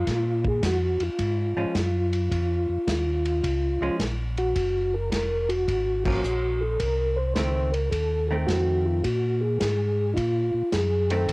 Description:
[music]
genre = soul jazz organ trio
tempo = 107 BPM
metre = 4/4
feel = swing 67% on 8ths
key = Bb minor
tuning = A4 = 437 Hz
[part]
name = percussive tonewheel organ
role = melody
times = 0.0-11.3 s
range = Eb4 to C5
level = -26 LUFS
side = equal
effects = slow rotary speaker, chorus vibrato, cassette tape
[part]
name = mellow tonewheel organ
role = bass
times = 0.0-11.3 s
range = F1 to Bb2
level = -26 LUFS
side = equal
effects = slow rotary speaker
[part]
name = vintage drum kit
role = drums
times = 0.1-11.3 s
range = crash cymbal, hi-hat, kick drum, ride cymbal, snare drum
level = -32 LUFS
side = equal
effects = cassette tape
[part]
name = vintage hollow-body jazz guitar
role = accompaniment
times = 1.6-11.3 s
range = Eb3 to Db4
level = -29 LUFS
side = right 1 dB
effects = cassette tape
[sound]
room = light reverb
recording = home recording on cassette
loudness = -22 LUFS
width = side -24 dB against mid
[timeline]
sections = 0.0-11.3 A section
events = band accent 6.0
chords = 0.1 Bbm7; 4.6 Gbmaj7; 6.8 F7; 9.0 Bb5

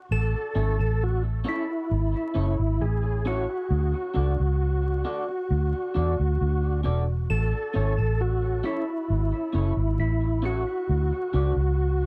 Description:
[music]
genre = roots reggae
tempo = 67 BPM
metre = 4/4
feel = straight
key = A major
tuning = A4 = 437 Hz
[part]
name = percussive tonewheel organ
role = melody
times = 0.1-12.1 s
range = E4 to A4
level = -31 LUFS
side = equal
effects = overdrive, chorus vibrato, stopped rotary speaker, tape echo
[part]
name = vintage muted fingered electric bass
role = bass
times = 0.1-12.1 s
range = E1 to E2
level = -26 LUFS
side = equal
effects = none
[part]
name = electric guitar through a small old amp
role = accompaniment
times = 0.6-11.5 s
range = C#4 to D5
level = -37 LUFS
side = equal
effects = analog chorus, tape echo
[sound]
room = little or no reverb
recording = dry, close 1970s-style studio recording, vinyl crackle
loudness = -26 LUFS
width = mono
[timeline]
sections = 0.0-12.1 A section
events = none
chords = 0.1 A; 3.7 D; 7.3 A; 10.9 D

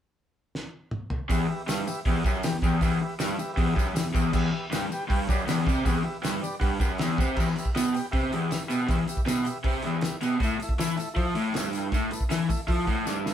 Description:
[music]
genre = garage rock duo or trio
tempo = 158 BPM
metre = 4/4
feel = straight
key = E minor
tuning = A4 = 442 Hz
[part]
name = cloth-damped thuddy drum kit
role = drums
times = 0.6-13.3 s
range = crash cymbal, hi-hat, kick drum, snare drum, toms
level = -28 LUFS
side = equal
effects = none
[part]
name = overdriven combo organ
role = sustained chords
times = 1.3-13.3 s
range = E4 to G5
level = -35 LUFS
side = equal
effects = none
[part]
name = raw garage guitar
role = riff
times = 1.3-13.3 s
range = E2 to F3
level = -27 LUFS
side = left 1 dB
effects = overdrive
[part]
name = tambourine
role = percussion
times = 1.3-13.3 s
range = none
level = -42 LUFS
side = left 5 dB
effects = none
[sound]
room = moderate small room reverb, RT60 0.5 s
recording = band playing live in one room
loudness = -24 LUFS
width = side -10 dB against mid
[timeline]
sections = 0.0-1.3 A section; 1.3-7.4 B section; 7.4-13.3 C section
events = drum fill 0.5-1.3, 13.1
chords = 0.0 N.C.; 1.3 Em; 10.4 A5

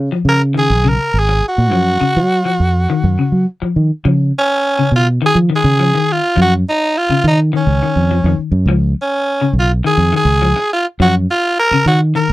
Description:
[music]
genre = afrobeat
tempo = 104 BPM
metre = 4/4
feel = straight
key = Db mixolydian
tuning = A4 = 440 Hz
[part]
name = fingered electric bass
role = bass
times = 0.0-12.3 s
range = Ab1 to Gb3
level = -13 LUFS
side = right 1 dB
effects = none
[part]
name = semi-hollow electric guitar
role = arpeggios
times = 0.1-12.3 s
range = Db3 to F3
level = -18 LUFS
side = left 5 dB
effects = none
[part]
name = raspy tenor saxophone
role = melody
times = 0.3-12.3 s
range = Db4 to Bb4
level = -15 LUFS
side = right 1 dB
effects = none
[sound]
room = little or no reverb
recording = dry, close 1970s-style studio recording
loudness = -12 LUFS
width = side -16 dB against mid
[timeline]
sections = 0.0-4.1 A section; 4.1-12.3 B section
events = none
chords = 0.0 Db7; 1.7 Gb5; 4.1 Db7; 6.4 Gb5; 8.7 Db7; 11.0 Gbmaj7

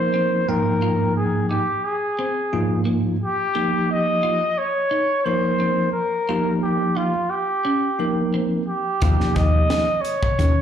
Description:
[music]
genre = electric jazz fusion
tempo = 88 BPM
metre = 4/4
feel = straight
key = Bb dorian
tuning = A4 = 441 Hz
[part]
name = trumpet with bucket mute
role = melody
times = 0.0-10.6 s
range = F4 to Eb5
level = -22 LUFS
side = equal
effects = slapback echo
[part]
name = bell-like tine electric piano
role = accompaniment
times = 0.0-9.9 s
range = Ab2 to G5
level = -22 LUFS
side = right 1 dB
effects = fast stereo tremolo, slapback echo
[part]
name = clean electric guitar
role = stabs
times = 0.1-10.6 s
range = Bb3 to G4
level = -29 LUFS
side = right 1 dB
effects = lush chorus, slapback echo
[part]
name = woody fretless electric bass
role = bass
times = 9.0-10.5 s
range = Eb2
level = -18 LUFS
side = left 1 dB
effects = none
[part]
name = crisp fusion drum kit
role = drums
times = 9.0-10.6 s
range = hi-hat, kick drum, snare drum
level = -23 LUFS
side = left 1 dB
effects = none
[sound]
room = light reverb, small room ambience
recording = live gig heard through the venue's PA, club reverb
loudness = -19 LUFS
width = side -9 dB against mid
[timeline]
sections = 0.0-10.6 A section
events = none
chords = 0.5 Abmaj7sus2; 3.6 Fsus2; 6.3 Bb5; 9.0 Eb9

